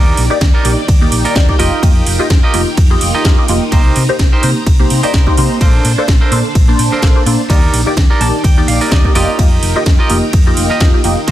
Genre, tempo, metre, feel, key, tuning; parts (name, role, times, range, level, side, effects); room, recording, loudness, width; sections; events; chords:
filtered disco house; 127 BPM; 4/4; swing 55% on 16ths; A4 = 440 Hz
funky polysynth comp; accompaniment; 0.0-11.3 s; Bb3 to A5; -17 LUFS; equal; chorus, phaser, sidechain pumping
string machine, full ensemble; sustained chords; 0.0-11.3 s; D4 to Bb5; -22 LUFS; equal; ensemble chorus, sidechain pumping
clean electric guitar; riff; 0.0-11.3 s; D4 to A5; -19 LUFS; right 4 dB; sidechain pumping
hollow-body short-scale fingered electric bass; bass; 0.0-11.3 s; F1 to C3; -16 LUFS; equal; sidechain pumping
house drum kit; drums; 0.2-11.3 s; hi-hat, ride cymbal, snare drum; -20 LUFS; right 2 dB; sidechain pumping on hats, small room ambience, sidechain pumping on cymbals
electronic kick drum; drums; 0.4-11.3 s; -11 LUFS; equal; small room ambience
digital ambience; dense, heavily limited modern master; -9 LUFS; side -13 dB against mid
0.0-11.3 A section
clean electric guitar fill 8.0-9.4
0.0 Ebmaj7; 1.6 F9sus4; 3.7 Cm7; 5.6 Bbmaj9; 7.5 Ebmaj7; 9.2 F9sus4